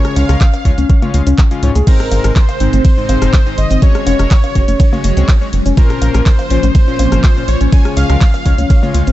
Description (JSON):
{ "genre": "progressive house", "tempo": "123 BPM", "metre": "4/4", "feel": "straight", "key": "unclear", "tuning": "A4 = 441 Hz", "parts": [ { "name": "soft supersaw", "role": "melody", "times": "0.0-9.1 s", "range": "Bb4 to Ab5", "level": "-21 LUFS", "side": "right 2 dB", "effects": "sidechain pumping, digital delay" }, { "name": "soft round pluck", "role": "arpeggios", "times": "0.0-9.1 s", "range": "Db3 to Db5", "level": "-21 LUFS", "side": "left 2 dB", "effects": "chorus, sidechain pumping, ping-pong delay" }, { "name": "chorused polysynth", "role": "stabs", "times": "0.0-9.0 s", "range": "Ab2 to F5", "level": "-21 LUFS", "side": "left 4 dB", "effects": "sidechain pumping, ping-pong delay" }, { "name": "pop drum kit", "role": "drums", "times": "0.0-9.1 s", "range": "cabasa, crash cymbal, handclaps, hi-hat, ride cymbal", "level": "-26 LUFS", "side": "right 1 dB", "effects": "overdrive, sidechain pumping on hats, sidechain pumping on perc, sidechain pumping on cymbals" }, { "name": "electronic rim click, cowbell and congas", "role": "percussion", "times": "0.0-9.0 s", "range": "none", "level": "-25 LUFS", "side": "left 4 dB", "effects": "overdrive, sidechain pumping on snare, sidechain pumping on perc" }, { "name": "tight sequencer bass", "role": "bass", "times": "0.2-9.1 s", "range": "Gb1 to Db2", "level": "-13 LUFS", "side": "equal", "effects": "sidechain pumping" }, { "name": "electronic kick drum", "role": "drums", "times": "0.4-8.8 s", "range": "none", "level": "-10 LUFS", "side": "equal", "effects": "overdrive" }, { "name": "evolving wavetable pad", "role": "sustained chords", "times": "2.3-9.1 s", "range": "C3 to C5", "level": "-23 LUFS", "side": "equal", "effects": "ensemble chorus, built-in reverb, phaser, sidechain pumping" } ], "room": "digital ambience", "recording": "dark, warm production, nothing above 8.0 kHz", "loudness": "-9 LUFS", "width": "side -14 dB against mid", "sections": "0.0-9.1 A section", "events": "none", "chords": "0.0 Db; 1.9 Ab; 3.8 Gbsus2; 5.8 Bbmadd9", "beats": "0.41 0.90 1.38 | 1.87 2.36 2.85 3.33 | 3.82 4.31 4.80 5.29 | 5.77 6.26 6.75 7.24 | 7.72 8.21 8.70" }